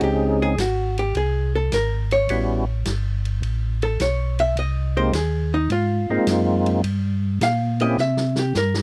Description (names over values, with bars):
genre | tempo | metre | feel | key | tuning
soul jazz organ trio | 106 BPM | 4/4 | swing 69% on 8ths | Ab major | A4 = 442 Hz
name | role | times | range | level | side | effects
percussive tonewheel organ | melody | 0.0-8.0 s | G3 to G#4 | -23 LUFS | equal | slow rotary speaker, chorus vibrato
archtop guitar, miked and amplified | accompaniment | 0.0-8.8 s | Eb4 to F5 | -26 LUFS | equal | none
mellow tonewheel organ | bass | 0.0-8.8 s | G1 to C3 | -25 LUFS | equal | chorus vibrato, slow rotary speaker
vintage drum kit | drums | 0.0-8.8 s | hi-hat, ride cymbal, snare drum | -35 LUFS | equal | none
room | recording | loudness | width
little or no reverb | dry, close 1970s-style studio recording | -22 LUFS | mono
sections
0.0-8.8 A section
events
hollow-body jazz guitar solo 0.0-8.8; drum fill 8.0-8.8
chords
0.0 Db5; 2.3 A13; 4.6 Abadd9; 6.8 Gdim; 8.0 C5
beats
| 0.02 0.59 1.16 1.73 | 2.29 2.86 3.43 4.00 | 4.57 5.14 5.71 6.28 | 6.85 7.42 7.98 8.55